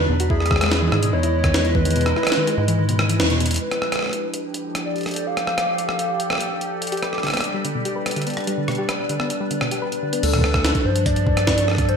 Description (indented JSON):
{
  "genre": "IDM",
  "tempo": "145 BPM",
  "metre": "4/4",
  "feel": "straight",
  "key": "D dorian",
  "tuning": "A4 = 440 Hz",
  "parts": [
    { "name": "warbly nostalgic lead", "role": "melody", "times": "0.0-6.7, 10.2-12.0 s", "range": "G#4 to F5", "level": "-24 LUFS", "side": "equal", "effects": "wide subtle chorus, digital delay" },
    { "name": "warbly tape-like pad", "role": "sustained chords", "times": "0.0-12.0 s", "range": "F3 to D#5", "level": "-27 LUFS", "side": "equal", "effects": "chorus, built-in reverb" },
    { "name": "soft round pluck", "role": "arpeggios", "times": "0.0-3.5, 6.9-10.2 s", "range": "B2 to B4", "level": "-26 LUFS", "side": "left 2 dB", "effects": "chorus, digital delay" },
    { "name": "rubbery square bass", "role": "bass", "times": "0.0-3.6, 10.2-12.0 s", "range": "D2 to G#2", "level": "-21 LUFS", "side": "equal", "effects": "none" },
    { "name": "bubbling stepped-filter texture", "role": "texture", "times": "0.0-10.2 s", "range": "G4 to B5", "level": "-34 LUFS", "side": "equal", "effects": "chorus, built-in reverb" },
    { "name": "jungle sampler-style drum kit", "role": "drums", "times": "0.2-12.0 s", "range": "crash cymbal, hi-hat, rim click, snare drum", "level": "-24 LUFS", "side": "equal", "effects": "studio reverb, gated reverb, digital delay" },
    { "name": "electronic kick drum", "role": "drums", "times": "0.3-1.8, 10.3-11.9 s", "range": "none", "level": "-22 LUFS", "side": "equal", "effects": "studio reverb" }
  ],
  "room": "moderate lush hall reverb, RT60 1.7 s",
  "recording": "bright 1980s-style digital production",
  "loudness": "-18 LUFS",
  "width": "side -6 dB against mid",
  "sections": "0.0-3.6 A section; 3.6-10.2 B section; 10.2-12.0 A section",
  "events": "kick drops out 2.0-3.6; band accent 3.2; drum fill 3.4",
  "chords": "0.3 Emaj7; 3.6 Dm; 6.9 G; 10.2 Dm",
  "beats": "| 0.30 0.71 1.13 1.54 | 1.96 2.37 2.78 3.20 | 3.61 4.03 4.44 4.85 | 5.27 5.68 6.09 6.51 | 6.92 7.33 7.75 8.16 | 8.58 8.99 9.40 9.82 | 10.23 10.65 11.06 11.47 | 11.89"
}